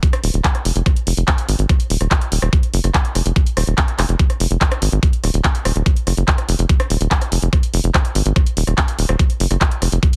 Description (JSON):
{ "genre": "psychedelic trance", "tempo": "144 BPM", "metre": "4/4", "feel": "straight", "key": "Eb minor", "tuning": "A4 = 438 Hz", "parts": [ { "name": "drum and bass drum kit", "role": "drums", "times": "0.0-10.2 s", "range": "handclaps, hi-hat, rim click", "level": "-24 LUFS", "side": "equal", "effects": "none" }, { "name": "electronic kick drum", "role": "drums", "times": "0.0-10.1 s", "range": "none", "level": "-17 LUFS", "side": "equal", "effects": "none" }, { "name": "tight sequencer bass", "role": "bass", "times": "0.2-10.0 s", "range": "Eb1 to Ab1", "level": "-19 LUFS", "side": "equal", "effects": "tube saturation" } ], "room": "little or no reverb", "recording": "none", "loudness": "-17 LUFS", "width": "mono", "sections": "0.0-10.2 A section", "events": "none", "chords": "none" }